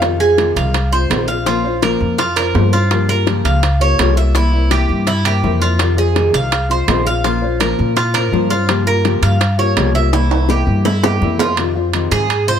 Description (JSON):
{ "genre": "latin, Cuban son and guajira", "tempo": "166 BPM", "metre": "4/4", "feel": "straight", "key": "F minor", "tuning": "A4 = 440 Hz", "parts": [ { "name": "nylon-string guitar", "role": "accompaniment", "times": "0.0-12.6 s", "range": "C3 to C5", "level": "-20 LUFS", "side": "left 6 dB", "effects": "none" }, { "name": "upright bass", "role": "bass", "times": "0.0-12.6 s", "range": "Bb1 to Bb2", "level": "-16 LUFS", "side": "equal", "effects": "none" }, { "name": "bongos", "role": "percussion", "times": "0.0-11.5 s", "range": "none", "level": "-21 LUFS", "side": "left 9 dB", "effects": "none" }, { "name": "timbales", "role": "percussion", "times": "0.0-12.5 s", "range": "none", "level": "-22 LUFS", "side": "right 7 dB", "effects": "none" }, { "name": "Cuban tres", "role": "arpeggios", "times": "0.2-12.6 s", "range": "E4 to F5", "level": "-18 LUFS", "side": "right 3 dB", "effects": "none" } ], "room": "light reverb", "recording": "none", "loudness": "-13 LUFS", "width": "side -8 dB against mid", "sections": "0.0-11.6 A section; 11.6-12.6 B section", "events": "drum fill 10.1-11.6; Cuban tres solo 11.6-12.6", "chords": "0.0 Fm7; 1.5 Bbmadd9; 2.9 Gm7b5; 4.4 C7; 5.8 Fm7; 7.2 Bbmadd9; 8.7 Gm7b5; 10.1 C7; 11.6 Fm7" }